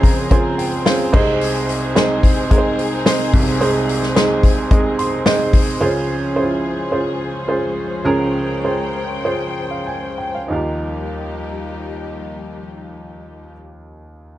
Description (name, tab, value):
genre	piano-driven pop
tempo	93-109 BPM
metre	4/4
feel	straight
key	unclear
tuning	A4 = 439 Hz
part	clear upright piano	accompaniment	0.0-14.4 s	C2 to C6	-18 LUFS	right 2 dB	none
part	warm studio string section	sustained chords	0.0-13.5 s	Db3 to G5	-28 LUFS	left 5 dB	none
part	natural country drum kit	drums	0.0-5.7 s	crash cymbal, hi-hat, kick drum, snare drum	-16 LUFS	left 1 dB	none
room	light reverb, small room ambience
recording	dark, warm production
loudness	-15 LUFS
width	side -14 dB against mid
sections	0.0-5.8 A section; 5.8-10.5 B section; 10.5-13.1 C section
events	upright piano fill 0.0-1.4, 4.7-5.8; slowing down 5.8-10.5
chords	0.0 Dbmaj7; 1.1 Ab/C; 5.8 Dbmaj7; 10.5 Ebadd9